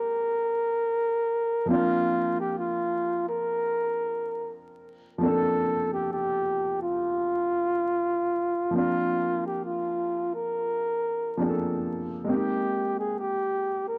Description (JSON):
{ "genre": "hip hop", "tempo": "68 BPM", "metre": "4/4", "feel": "swing 59% on 16ths", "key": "Bb major", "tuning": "A4 = 439 Hz", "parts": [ { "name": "breathy flugelhorn", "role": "melody", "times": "0.0-14.0 s", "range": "F4 to Bb4", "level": "-28 LUFS", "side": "equal", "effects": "low-pass filter" }, { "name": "warm upright piano", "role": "accompaniment", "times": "0.0-14.0 s", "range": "F3 to Bb4", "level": "-32 LUFS", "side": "equal", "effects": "low-pass filter" } ], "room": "light reverb", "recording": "dry, gritty hardware recording, vinyl crackle", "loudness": "-27 LUFS", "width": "mono", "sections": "0.0-8.8 A section; 8.8-14.0 B section", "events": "none", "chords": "0.0 Abmaj9; 1.7 Bbmaj9; 12.3 Abmaj9" }